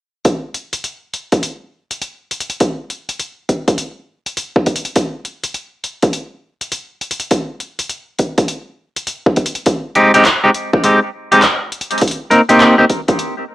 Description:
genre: glitch hop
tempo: 102 BPM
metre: 4/4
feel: swing 64% on 16ths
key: unclear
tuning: A4 = 440 Hz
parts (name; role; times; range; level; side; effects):
- pop drum kit; drums; 0.2-13.3 s; handclaps, hi-hat; -19 LUFS; equal; studio reverb
- electronic kick drum; drums; 0.3-13.2 s; none; -15 LUFS; equal; high-pass filter on kick, studio reverb
- clean electric guitar; stabs; 10.0-12.8 s; Ab3 to Bb4; -10 LUFS; equal; sidechain pumping, cassette tape, analog delay
room: moderate booth ambience, RT60 0.2 s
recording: home recording on cassette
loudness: -14 LUFS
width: side -16 dB against mid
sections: 0.3-13.5 A section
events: none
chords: 0.3 N.C.; 9.7 Abmaj7; 12.0 Bbsus24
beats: | 0.25 0.84 1.43 2.02 | 2.60 3.19 3.78 4.37 | 4.96 5.54 6.13 6.72 | 7.31 7.90 8.49 9.07 | 9.66 10.25 10.84 11.43 | 12.02 12.60 13.19

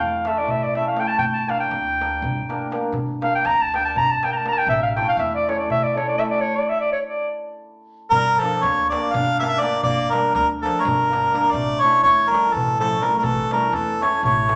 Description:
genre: balkan folk, Balkan wedding band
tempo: 244 BPM (eighths)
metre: 7/8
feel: straight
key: G dorian sharp4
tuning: A4 = 440 Hz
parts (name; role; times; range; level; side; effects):
- warm clarinet; second line; 0.0-14.6 s; E3 to Bb5; -25 LUFS; equal; none
- upright bass; bass; 0.0-14.6 s; G1 to E2; -36 LUFS; equal; none
- darbuka; percussion; 0.1-14.6 s; none; -32 LUFS; equal; none
- cimbalom; accompaniment; 0.3-14.6 s; A3 to Bb4; -30 LUFS; equal; none
- warm harmonica; melody; 8.1-14.6 s; A4 to F5; -20 LUFS; equal; none
room: wet large studio reverb, RT60 0.8 s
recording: none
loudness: -20 LUFS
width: mono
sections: 0.0-8.1 A section; 8.1-14.6 B section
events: speeding up 0.0-14.6; clarinet solo 0.0-8.1; stop 6.4-8.1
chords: 0.0 A; 1.2 Gm; 4.7 A; 6.4 N.C.; 8.1 Gm; 11.5 A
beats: 0.20 0.45 0.70 0.95 | 1.20 1.44 1.69 1.94 2.19 2.44 2.69 | 2.93 3.18 3.43 3.68 3.92 4.17 4.42 | 4.67 4.91 5.16 5.41 5.65 5.90 6.15 | 6.39 6.64 6.88 7.13 7.38 7.62 7.87 | 8.11 8.36 8.60 8.85 9.09 9.34 9.58 | 9.83 10.07 10.31 10.56 10.80 11.04 11.29 | 11.53 11.77 12.02 12.26 12.50 12.74 12.99 | 13.23 13.47 13.71 13.95 14.20 14.44

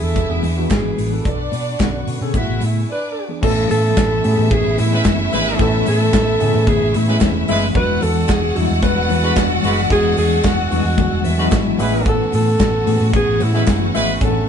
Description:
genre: disco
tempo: 111 BPM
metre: 4/4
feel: straight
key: unclear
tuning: A4 = 441 Hz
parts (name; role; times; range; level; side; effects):
- mellow alto saxophone; melody; 0.0-14.5 s; E4 to B4; -21 LUFS; equal; none
- rich studio violin section; second line; 0.0-14.5 s; D4 to F#5; -25 LUFS; equal; none
- barky tine electric piano; accompaniment; 0.0-14.5 s; C#3 to B4; -22 LUFS; left 2 dB; medium stereo tremolo
- clear studio string section; sustained chords; 0.0-14.5 s; B4 to E6; -32 LUFS; left 1 dB; none
- hollow-body short-scale fingered electric bass; bass; 0.0-14.4 s; E1 to B2; -20 LUFS; right 1 dB; none
- modern studio drum kit; drums; 0.2-14.3 s; crash cymbal, hi-hat, kick drum, snare drum; -21 LUFS; equal; none
- congas; percussion; 0.2-14.1 s; none; -28 LUFS; left 7 dB; none
- group handclap; percussion; 0.7-13.8 s; none; -33 LUFS; right 6 dB; none
- mellow horn section; stabs; 4.9-14.1 s; G#3 to B4; -22 LUFS; right 1 dB; none
room: moderate stone room reverb, RT60 0.9 s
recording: band playing live in one room, nothing above 10.9 kHz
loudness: -14 LUFS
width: side -7 dB against mid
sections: 0.0-3.4 A section; 3.4-14.5 B section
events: break 2.9-3.4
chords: 0.0 E7; 1.3 Bm9; 2.3 Amaj9; 2.9 E7; 3.4 Amaj9; 7.7 E9; 11.8 Amaj9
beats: 0.16 0.71 | 1.25 1.80 2.34 2.88 | 3.43 3.97 4.51 5.05 | 5.59 6.13 6.67 7.21 | 7.75 8.29 8.83 9.37 | 9.90 10.44 10.98 11.52 | 12.06 12.60 13.13 13.67 | 14.21

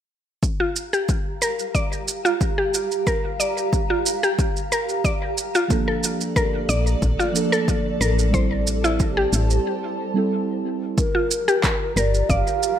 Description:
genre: organic downtempo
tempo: 91 BPM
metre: 4/4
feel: straight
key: G dorian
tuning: A4 = 439 Hz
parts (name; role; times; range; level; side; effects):
- granular cloud pad; sustained chords; 0.9-12.8 s; F4 to Bb5; -28 LUFS; right 1 dB; built-in reverb, sidechain pumping
- electronic kick drum; drums; 0.4-12.4 s; none; -23 LUFS; equal; overdrive
- electronic shaker and handclaps; drums; 0.4-12.8 s; none; -27 LUFS; right 4 dB; overdrive
- mallet-like synth pluck; arpeggios; 0.6-12.4 s; E4 to D5; -24 LUFS; left 1 dB; chorus, ping-pong delay
- muted felt-like synth keys; accompaniment; 5.7-11.0 s; F3 to A4; -25 LUFS; right 3 dB; chorus, sidechain pumping, ping-pong delay
- woody FM bass; bass; 6.7-12.4 s; G1 to Bb1; -21 LUFS; equal; sidechain pumping
- breathy mellow low ney; melody; 11.0-12.8 s; Bb4 to F5; -24 LUFS; equal; none
room: light reverb, digital ambience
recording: none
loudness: -19 LUFS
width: side -10 dB against mid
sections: 0.4-11.0 A section; 11.0-12.8 B section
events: break 9.7-11.0; filter sweep on synth pluck 11.0-12.8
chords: 0.4 Gm7; 5.7 Bbmaj7; 8.3 Am7; 11.0 Gm7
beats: | 0.43 1.09 1.75 2.40 | 3.06 3.72 4.38 5.04 | 5.70 6.36 7.02 7.68 | 8.34 9.00 9.66 10.32 | 10.98 11.64 12.29

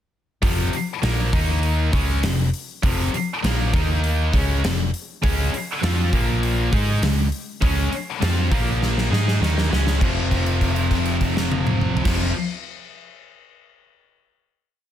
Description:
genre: hard rock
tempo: 100 BPM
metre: 4/4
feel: straight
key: F minor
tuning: A4 = 440 Hz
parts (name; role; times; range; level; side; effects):
- heavy high-gain guitar; riff; 0.4-12.3 s; F2 to Ab4; -27 LUFS; left 9 dB; distortion
- scooped high-gain guitar; riff; 0.4-12.3 s; F2 to Ab4; -28 LUFS; right 11 dB; distortion
- hollow-body short-scale fingered electric bass; bass; 0.4-12.3 s; F1 to Ab2; -22 LUFS; equal; none
- gated 80s drum kit; drums; 0.4-12.2 s; crash cymbal, hi-hat, kick drum, snare drum, toms; -24 LUFS; equal; none
- distorted electric guitar; riff; 5.2-12.3 s; F2 to Ab4; -27 LUFS; right 1 dB; distortion
room: studio ambience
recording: dense, heavily limited modern master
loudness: -19 LUFS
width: side -11 dB against mid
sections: 0.4-10.0 riff; 10.0-12.4 final chord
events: drum fill 8.8-10.0; held note 10.0-12.0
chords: 0.4 F5; 1.3 Eb5; 1.9 Fm; 3.7 Eb5; 4.3 Fm; 5.2 Db5; 6.1 Bb5; 6.7 Db5; 8.5 Bb5; 9.1 Db5; 10.0 F5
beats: | 0.42 1.02 1.63 2.23 | 2.83 3.43 4.03 4.63 | 5.22 5.82 6.42 7.02 | 7.62 8.21 8.81 9.41 | 10.01 10.61 11.21 11.81

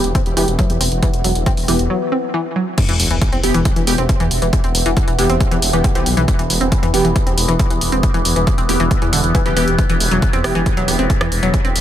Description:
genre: driving peak-time techno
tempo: 137 BPM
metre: 4/4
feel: straight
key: E minor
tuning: A4 = 440 Hz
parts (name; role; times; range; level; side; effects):
- rave stab; stabs; 0.0-10.9 s; E3 to G4; -23 LUFS; right 2 dB; chorus, built-in reverb, sidechain pumping, digital delay
- detuned saw bass; bass; 0.0-11.8 s; E1 to E2; -20 LUFS; equal; sidechain pumping
- overtone-sweeping drone; drone; 0.0-11.8 s; E3 to B3; -23 LUFS; equal; chorus, built-in reverb, sidechain pumping
- punchy analog drum machine; drums; 0.0-11.8 s; crash cymbal, hi-hat, rim click; -22 LUFS; equal; overdrive, sidechain pumping on hats, sidechain pumping on cymbals
- analog pluck; riff; 0.1-11.7 s; D3 to C4; -21 LUFS; left 1 dB; chorus, sidechain pumping, dub echo
- electronic kick drum; drums; 0.1-11.6 s; none; -17 LUFS; equal; none
- sub drop; sound effects; 2.8-4.5 s; none; -25 LUFS; equal; none
room: digital ambience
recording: none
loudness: -14 LUFS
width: side -11 dB against mid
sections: 0.0-2.8 A section; 2.8-11.8 B section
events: break 1.9-2.8; drop 2.8-11.8; impact 2.8-4.5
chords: 0.0 E5; 2.8 Em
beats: 0.15 0.59 | 1.02 1.46 1.90 2.34 | 2.78 3.21 3.65 4.09 | 4.53 4.97 5.41 5.84 | 6.28 6.72 7.16 7.59 | 8.03 8.47 8.91 9.35 | 9.79 10.22 10.66 11.10 | 11.54

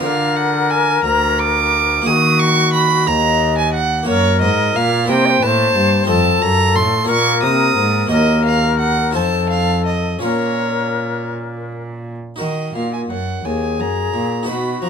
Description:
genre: classical, baroque-style sonata movement with continuo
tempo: 58 BPM (dotted quarters)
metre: 6/8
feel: rubato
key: Eb minor, Bb minor from 4.1 s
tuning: A4 = 442 Hz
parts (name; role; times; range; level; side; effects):
- bright wooden flute; melody; 0.0-14.9 s; F#4 to Eb5; -19 LUFS; left 8 dB; none
- rich violin; second line; 0.0-14.9 s; Db5 to Eb6; -18 LUFS; right 6 dB; none
- harpsichord; accompaniment; 0.0-14.9 s; D2 to F5; -22 LUFS; left 1 dB; none
- rich cello; bass; 0.0-14.9 s; D2 to F3; -20 LUFS; right 1 dB; none
room: light reverb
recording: none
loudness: -14 LUFS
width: side -7 dB against mid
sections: 0.0-12.4 A section; 12.4-14.9 A section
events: none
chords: 0.0 Bb/D; 2.1 Ebm; 4.1 Gb; 5.1 C7; 6.1 F7; 7.1 Bb5; 8.1 Ebm; 9.2 F7; 10.2 Bbm; 12.4 Ebm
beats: | 0.02 1.05 | 2.07 3.07 | 4.08 5.09 | 6.09 7.09 | 8.12 9.15 | 10.23 11.32 | 12.40 13.45 | 14.48

